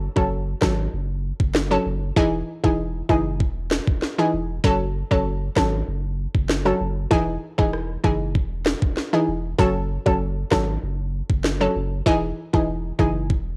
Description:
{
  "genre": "dancehall",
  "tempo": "97 BPM",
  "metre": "4/4",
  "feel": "straight",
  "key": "F# dorian",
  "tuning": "A4 = 442 Hz",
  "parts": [
    { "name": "warm sub bass", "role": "bass", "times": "0.0-13.6 s", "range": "E1 to G#1", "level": "-29 LUFS", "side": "equal", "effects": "none" },
    { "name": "analog pluck", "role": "accompaniment", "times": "0.2-13.3 s", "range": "E3 to A4", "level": "-24 LUFS", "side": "equal", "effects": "chorus, cassette tape" },
    { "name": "island pop drum kit", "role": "drums", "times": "0.2-13.5 s", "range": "kick drum, rim click, snare drum", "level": "-25 LUFS", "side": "equal", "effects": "none" }
  ],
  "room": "light reverb",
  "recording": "home recording on cassette",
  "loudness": "-22 LUFS",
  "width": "mono",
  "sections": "0.0-13.6 A section",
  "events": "none",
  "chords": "0.0 F#m; 2.2 Emaj7; 4.6 F#m; 7.1 Emaj7; 9.6 F#m; 12.1 Emaj7"
}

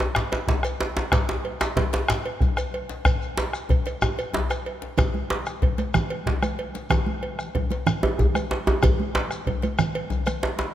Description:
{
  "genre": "west african traditional, West African drum ensemble",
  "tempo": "125 BPM (dotted quarters)",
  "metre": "12/8",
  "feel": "straight",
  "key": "none",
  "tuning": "none",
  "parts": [
    { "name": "cowbell", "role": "percussion", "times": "0.0-10.6 s", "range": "none", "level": "-33 LUFS", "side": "right 2 dB", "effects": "none" },
    { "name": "djembe", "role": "percussion", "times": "0.0-10.7 s", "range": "none", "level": "-26 LUFS", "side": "right 1 dB", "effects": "none" },
    { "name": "shekere", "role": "percussion", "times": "0.0-10.7 s", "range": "none", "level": "-34 LUFS", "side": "left 2 dB", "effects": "none" },
    { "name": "bombo", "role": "percussion", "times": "0.1-10.7 s", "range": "none", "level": "-26 LUFS", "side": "right 1 dB", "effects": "none" },
    { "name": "djembe", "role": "percussion", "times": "0.5-10.7 s", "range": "none", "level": "-29 LUFS", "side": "left 4 dB", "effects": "none" },
    { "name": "congas", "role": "percussion", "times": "5.0-10.7 s", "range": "none", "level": "-29 LUFS", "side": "right 5 dB", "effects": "none" }
  ],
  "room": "moderate concert hall reverb, RT60 2.4 s",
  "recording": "close, detailed microphones",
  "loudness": "-22 LUFS",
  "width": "side -12 dB against mid",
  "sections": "0.0-10.7 A section",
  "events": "none",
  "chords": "none"
}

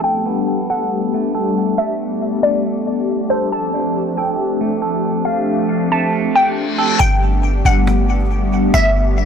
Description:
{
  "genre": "hip hop, atmospheric cloud-rap",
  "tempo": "138 BPM",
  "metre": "4/4",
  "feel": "half-time",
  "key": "G major",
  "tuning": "A4 = 438 Hz",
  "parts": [
    { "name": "glassy wavetable pluck", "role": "melody", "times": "0.0-9.3 s", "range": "C5 to A5", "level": "-20 LUFS", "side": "left 1 dB", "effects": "chorus, ping-pong delay" },
    { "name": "hollow soft pad", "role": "sustained chords", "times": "0.0-9.3 s", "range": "F3 to G4", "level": "-19 LUFS", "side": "left 2 dB", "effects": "ensemble chorus" },
    { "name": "semi-hollow electric guitar", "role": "arpeggios", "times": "0.0-7.0 s", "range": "A3 to A4", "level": "-23 LUFS", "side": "right 6 dB", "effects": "ping-pong delay" },
    { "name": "reverse cymbal", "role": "sound effects", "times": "6.4-7.0 s", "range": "none", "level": "-22 LUFS", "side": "left 8 dB", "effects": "none" },
    { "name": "clean 808-style bass", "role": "bass", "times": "7.0-9.3 s", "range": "G1", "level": "-16 LUFS", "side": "equal", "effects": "tube saturation" },
    { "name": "cajon", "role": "drums", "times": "7.0-9.2 s", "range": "none", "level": "-28 LUFS", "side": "equal", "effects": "none" }
  ],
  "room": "light reverb, digital ambience",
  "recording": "blown-out, overdriven recording, overdrive, low-pass filter, faint mains hum",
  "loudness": "-15 LUFS",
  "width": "side -7 dB against mid",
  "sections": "0.0-7.0 A section; 7.0-9.3 B section",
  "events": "filter sweep 0.0-7.0; reverse cymbal 6.4-7.0",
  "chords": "0.0 Gadd9; 3.5 F69; 7.0 Gmaj9"
}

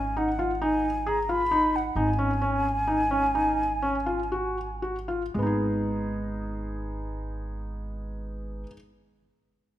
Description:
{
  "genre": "contemporary instrumental, chamber music in an uneven meter",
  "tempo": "112-134 BPM",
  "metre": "7/4",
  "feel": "straight",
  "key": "G# dorian",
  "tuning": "A4 = 440 Hz",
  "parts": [
    { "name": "breathy mellow concert flute", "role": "melody", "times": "0.0-4.8 s", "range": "F#5 to B5", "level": "-27 LUFS", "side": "equal", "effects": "none" },
    { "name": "upright bass", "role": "bass", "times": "0.0-8.6 s", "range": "G#1", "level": "-33 LUFS", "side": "right 1 dB", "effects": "none" },
    { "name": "felt-muted upright piano", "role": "arpeggios", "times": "0.2-8.8 s", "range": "G#3 to G#4", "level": "-28 LUFS", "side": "left 1 dB", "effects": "none" }
  ],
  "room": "moderate recital hall reverb, RT60 1.7 s",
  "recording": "none",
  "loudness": "-25 LUFS",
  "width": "side -13 dB against mid",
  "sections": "0.0-5.3 A section; 5.3-9.1 B section",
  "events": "slowing down 1.5-5.3",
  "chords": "0.0 G#m; 2.0 G#5; 5.3 G#m"
}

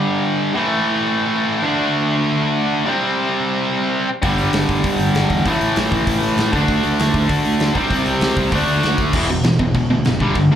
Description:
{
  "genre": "punk rock",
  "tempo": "196 BPM",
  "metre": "4/4",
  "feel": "straight",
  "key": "E minor",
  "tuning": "A4 = 441 Hz",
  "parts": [
    { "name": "tight distorted guitar", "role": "riff", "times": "0.0-10.6 s", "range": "E2 to D4", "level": "-16 LUFS", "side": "equal", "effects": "distortion, slapback echo" },
    { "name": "fuzz picked electric bass", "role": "bass", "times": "4.2-10.6 s", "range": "E1 to E2", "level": "-21 LUFS", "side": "equal", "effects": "overdrive" },
    { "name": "big rock drum kit", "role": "drums", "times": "4.2-10.4 s", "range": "crash cymbal, hi-hat, kick drum, snare drum", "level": "-22 LUFS", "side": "equal", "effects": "none" }
  ],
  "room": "light reverb",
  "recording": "live gig heard through the venue's PA, club reverb",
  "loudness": "-15 LUFS",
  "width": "side -10 dB against mid",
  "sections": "0.0-9.1 A section; 9.1-10.6 B section",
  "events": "none",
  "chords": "0.0 G5; 0.6 A5; 1.6 D5; 2.9 C5; 4.2 G5; 5.5 A5; 6.5 D5; 7.8 C5; 8.5 D5; 9.1 E5"
}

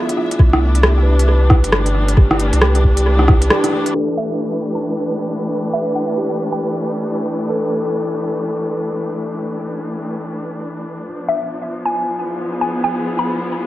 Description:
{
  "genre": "future garage",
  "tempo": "135 BPM",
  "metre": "4/4",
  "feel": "swing 61% on 16ths",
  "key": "unclear",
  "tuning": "A4 = 442 Hz",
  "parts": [
    { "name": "tine electric piano", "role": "accompaniment", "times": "0.0-11.1 s", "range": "D4 to B4", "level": "-23 LUFS", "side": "equal", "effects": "medium stereo tremolo, sidechain pumping, low-pass filter, tape echo" },
    { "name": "warm studio string section", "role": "sustained chords", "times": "0.0-13.7 s", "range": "E3 to E5", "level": "-21 LUFS", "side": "left 1 dB", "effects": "sidechain pumping" },
    { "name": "organic electronic drum kit", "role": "drums", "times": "0.1-3.9 s", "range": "hi-hat, rim click", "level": "-18 LUFS", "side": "equal", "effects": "low-pass filter on snare, low-pass filter on hats, low-pass filter on room, analog delay" },
    { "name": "warm sub bass", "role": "bass", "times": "0.4-3.5 s", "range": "G1 to C2", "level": "-14 LUFS", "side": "equal", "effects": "sidechain pumping" },
    { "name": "electronic kick drum", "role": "drums", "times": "0.4-3.4 s", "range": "none", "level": "-11 LUFS", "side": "equal", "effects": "none" },
    { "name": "hollow square pluck", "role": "melody", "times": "4.2-6.8, 11.3-13.4 s", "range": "E5 to B5", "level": "-23 LUFS", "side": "equal", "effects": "chorus, tape echo" }
  ],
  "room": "moderate plate reverb, RT60 1.2 s, digital ambience",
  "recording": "echo-heavy mix, vinyl crackle, low-pass filter",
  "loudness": "-15 LUFS",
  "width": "side -15 dB against mid",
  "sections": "0.0-3.9 A section; 3.9-13.7 B section",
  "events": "band accent 3.5; filter sweep on tine electric piano 3.9-13.7; filter sweep 3.9-13.7",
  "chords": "0.4 C69; 3.9 G69/E; 11.1 E7b9"
}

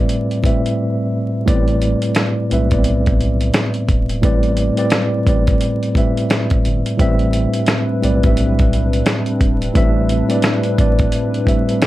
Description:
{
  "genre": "lo-fi hip hop",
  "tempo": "87 BPM",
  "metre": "4/4",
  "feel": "swing 60% on 16ths",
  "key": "A minor",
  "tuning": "A4 = 440 Hz",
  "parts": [
    { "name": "mellow tine electric piano", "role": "accompaniment", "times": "0.0-11.9 s", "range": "A2 to E5", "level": "-17 LUFS", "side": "equal", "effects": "medium stereo tremolo, cassette tape, low-pass filter" },
    { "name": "round analog bass", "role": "bass", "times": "0.0-11.1 s", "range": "E1 to B1", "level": "-20 LUFS", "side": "equal", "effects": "none" },
    { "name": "dusty soul sampler-style drum kit", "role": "drums", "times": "0.1-11.9 s", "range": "hi-hat, kick drum, snare drum", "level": "-17 LUFS", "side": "equal", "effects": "none" },
    { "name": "hollow soft pad", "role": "sustained chords", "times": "7.4-11.9 s", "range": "G3 to B4", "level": "-25 LUFS", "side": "left 1 dB", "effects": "chorus, low-pass filter, plate reverb" }
  ],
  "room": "moderate small room reverb, RT60 0.5 s",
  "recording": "vinyl crackle",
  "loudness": "-14 LUFS",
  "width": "side -16 dB against mid",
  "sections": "0.0-1.5 A section; 1.5-11.9 A section",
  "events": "break 0.8-1.5",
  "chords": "0.0 Am11"
}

